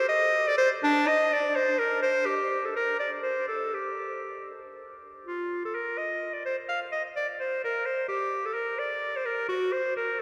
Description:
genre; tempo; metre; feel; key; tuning
classical, baroque-style fantasia for unaccompanied clarinet; 77-87 BPM (dotted quarters); 6/8; rubato; G minor, Bb major from 5.3 s; A4 = 440 Hz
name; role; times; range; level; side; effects
bright clarinet; solo; 0.0-10.2 s; D4 to F5; -28 LUFS; equal; none
room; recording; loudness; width
wet cathedral reverb, RT60 6.0 s; heard from further back in the room; -28 LUFS; mono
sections
0.0-5.3 A section; 5.3-10.2 A section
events
none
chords
none

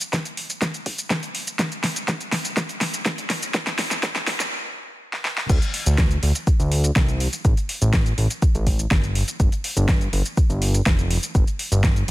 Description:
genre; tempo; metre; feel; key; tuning
progressive house; 123 BPM; 4/4; straight; unclear; A4 = 435 Hz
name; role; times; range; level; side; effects
deep house drum kit; drums; 0.0-12.1 s; crash cymbal, hi-hat, shaker, snare drum; -24 LUFS; equal; sidechain pumping on hats, sidechain pumping on perc, sidechain pumping on cymbals
electronic kick drum; drums; 0.1-11.9 s; none; -20 LUFS; equal; high-pass filter on kick
fat analog bass; bass; 5.5-12.1 s; F1 to D2; -20 LUFS; equal; sidechain pumping
room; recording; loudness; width
digital ambience; high-pass filter; -19 LUFS; side -17 dB against mid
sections
0.0-5.5 A section; 5.5-12.1 B section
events
build-up 0.0-5.5; drum fill 0.0-4.5, 5.1-5.5; stop 4.5-5.5; drop 5.5-12.1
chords
none

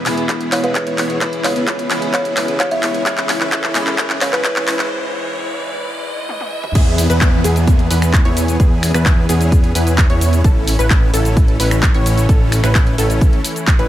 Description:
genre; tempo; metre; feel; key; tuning
EDM, festival progressive house; 130 BPM; 4/4; straight; E major; A4 = 440 Hz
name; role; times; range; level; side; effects
picked acoustic archtop guitar; accompaniment; 0.0-4.9 s; E3 to E4; -26 LUFS; left 1 dB; sidechain pumping, digital delay
lush unison pad; sustained chords; 0.0-13.9 s; C#2 to G#4; -27 LUFS; left 1 dB; chorus, sidechain pumping
dense compressed supersaw; riff; 0.0-13.9 s; B3 to C#5; -23 LUFS; equal; sidechain pumping, digital delay
riser and downlifter; sound effects; 0.4-10.4 s; none; -27 LUFS; equal; none
big-room dance drum kit; drums; 0.1-13.9 s; crash cymbal, finger snaps, handclaps, hi-hat, shaker, toms; -20 LUFS; equal; overdrive, studio reverb
electronic kick drum; drums; 0.3-13.8 s; none; -13 LUFS; equal; high-pass filter on kick, studio reverb
buzzing kalimba; melody; 0.5-4.4 s; B4 to E5; -22 LUFS; equal; digital delay
wide unison pluck; arpeggios; 6.8-13.9 s; G#4 to C#5; -25 LUFS; right 1 dB; cassette tape, sidechain pumping, digital delay
fat analog bass; bass; 6.8-13.9 s; A1 to E2; -16 LUFS; equal; sidechain pumping
room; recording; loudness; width
light reverb, digital ambience; high-pass filter; -13 LUFS; side -13 dB against mid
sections
0.0-6.8 A section; 6.8-13.9 B section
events
build-up 0.0-6.8; drum fill 0.0-4.9, 6.3-6.8; riser 0.4-6.8; break 4.9-6.8; drop 6.8-13.9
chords
0.0 E; 3.1 C#m; 6.8 E; 10.4 A

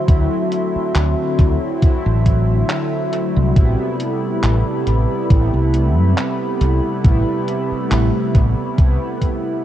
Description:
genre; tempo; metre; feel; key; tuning
vaporwave; 69 BPM; 4/4; swing 55% on 16ths; A dorian; A4 = 440 Hz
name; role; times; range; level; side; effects
mellow synth brass; accompaniment; 0.0-9.6 s; C3 to E4; -20 LUFS; left 1 dB; lush chorus, dub echo
warbly tape-like pad; sustained chords; 0.0-9.6 s; F#4 to C6; -26 LUFS; right 2 dB; chorus, built-in reverb
mellow fretless electric bass; bass; 0.1-9.0 s; A1 to F#2; -16 LUFS; equal; wide subtle chorus
detuned 8-bit digital drum machine; drums; 0.1-9.4 s; handclaps, hi-hat; -29 LUFS; equal; small room ambience, dub echo
electronic kick drum; drums; 0.1-9.4 s; none; -14 LUFS; equal; small room ambience
room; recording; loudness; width
digital ambience; echo-heavy mix, cassette tape; -15 LUFS; side -12 dB against mid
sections
0.0-9.6 A section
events
fade-out 8.2-9.6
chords
0.0 D9; 3.6 Am9

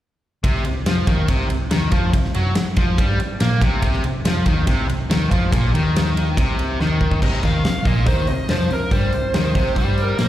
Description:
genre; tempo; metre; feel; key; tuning
hard rock; 142 BPM; 4/4; straight; C minor; A4 = 441 Hz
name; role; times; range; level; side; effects
distorted electric guitar; riff; 0.4-10.3 s; Bb2 to Bb3; -24 LUFS; equal; distortion, slapback echo
hollow-body short-scale fingered electric bass; bass; 0.4-10.3 s; Bb1 to Bb2; -20 LUFS; equal; none
huge arena drum kit; drums; 0.4-10.3 s; crash cymbal, hi-hat, kick drum, ride cymbal, snare drum; -20 LUFS; equal; none
bluesy overdriven lead guitar; melody; 7.2-10.3 s; Bb4 to F5; -24 LUFS; right 1 dB; distortion, slapback echo
room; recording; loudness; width
little or no reverb; live gig heard through the venue's PA, recital hall reverb; -16 LUFS; side -13 dB against mid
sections
0.4-7.2 A section; 7.2-10.3 B section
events
drum fill 6.8-7.2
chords
0.4 Cm

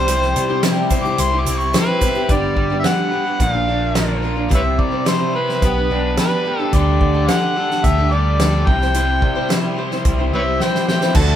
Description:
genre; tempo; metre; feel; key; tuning
folk rock and heartland rock; 108 BPM; 4/4; straight; unclear; A4 = 440 Hz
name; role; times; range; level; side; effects
overdriven harmonica; melody; 0.0-11.4 s; B4 to D6; -20 LUFS; left 1 dB; none
picked steel-string acoustic guitar; accompaniment; 0.0-11.4 s; G2 to C5; -23 LUFS; left 2 dB; none
tonewheel organ; sustained chords; 0.0-2.3, 6.4-11.4 s; G3 to C5; -31 LUFS; left 1 dB; none
raw garage guitar; riff; 0.0-11.4 s; Bb2 to C5; -24 LUFS; equal; overdrive
picked electric bass; bass; 0.0-11.4 s; G1 to C3; -21 LUFS; equal; none
natural country drum kit; drums; 0.1-11.3 s; crash cymbal, hi-hat, kick drum, snare drum; -19 LUFS; equal; none
tube shaker; percussion; 0.1-2.2 s; none; -36 LUFS; right 6 dB; none
room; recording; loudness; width
moderate stone room reverb, RT60 1.0 s; band playing live in one room; -15 LUFS; side -10 dB against mid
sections
0.0-2.3 A section; 2.3-11.2 B section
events
harmonica solo 0.0-2.3; drum fill 10.6-11.2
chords
0.0 C; 2.3 G; 3.4 Bb; 4.5 C; 5.6 G/B; 6.7 Dsus4; 8.7 C

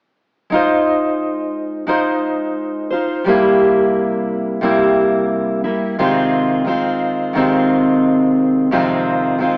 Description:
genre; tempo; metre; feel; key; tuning
indie pop; 88 BPM; 4/4; swing 55% on 16ths; Ab major; A4 = 440 Hz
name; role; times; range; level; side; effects
fingerpicked steel-string acoustic guitar; solo; 0.5-9.6 s; F2 to C5; -16 LUFS; equal; vibrato effect
room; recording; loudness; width
moderate stone room reverb, RT60 1.1 s; band playing live in one room, AM radio sound; -17 LUFS; mono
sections
0.5-9.6 A section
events
none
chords
0.5 Ab6; 3.2 C7; 6.0 Ab6/C; 8.7 Fm7

